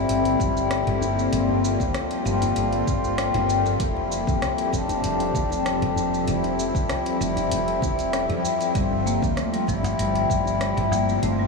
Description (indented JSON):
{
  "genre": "organic downtempo",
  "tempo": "97 BPM",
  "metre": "4/4",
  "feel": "straight",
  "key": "G dorian",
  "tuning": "A4 = 440 Hz",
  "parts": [
    { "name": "pedal harmonium", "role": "accompaniment", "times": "0.0-11.5 s", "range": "G3 to F4", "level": "-25 LUFS", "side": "left 3 dB", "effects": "sidechain pumping, analog delay, shimmer reverb" },
    { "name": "bowed-like drone", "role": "sustained chords", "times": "0.0-11.5 s", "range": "F3 to E5", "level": "-27 LUFS", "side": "left 2 dB", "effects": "built-in reverb, sidechain pumping, shimmer reverb" },
    { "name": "woody fretless electric bass", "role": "bass", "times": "0.0-11.5 s", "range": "F1 to F2", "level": "-28 LUFS", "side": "equal", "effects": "sidechain pumping" },
    { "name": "afro-pop drum kit", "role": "drums", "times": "0.1-11.4 s", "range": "hi-hat, rim click, shaker, woodblock", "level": "-33 LUFS", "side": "right 1 dB", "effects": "none" },
    { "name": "djembe", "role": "percussion", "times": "0.3-11.5 s", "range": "none", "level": "-36 LUFS", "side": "left 4 dB", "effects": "none" },
    { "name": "electronic kick drum", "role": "drums", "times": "0.4-10.4 s", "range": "none", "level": "-28 LUFS", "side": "equal", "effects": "none" },
    { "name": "marimba with medium mallets", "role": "arpeggios", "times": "8.8-11.5 s", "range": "F3 to Bb3", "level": "-27 LUFS", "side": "equal", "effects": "analog delay, shimmer reverb" }
  ],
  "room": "wet huge ambient reverb, RT60 8.5 s",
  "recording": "dreamy mix soaked in reverb, small room reverb",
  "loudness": "-21 LUFS",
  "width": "side -3 dB against mid",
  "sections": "0.0-11.5 A section",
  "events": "none",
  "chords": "0.0 Gm11; 3.8 Fmaj9; 8.8 G9sus4"
}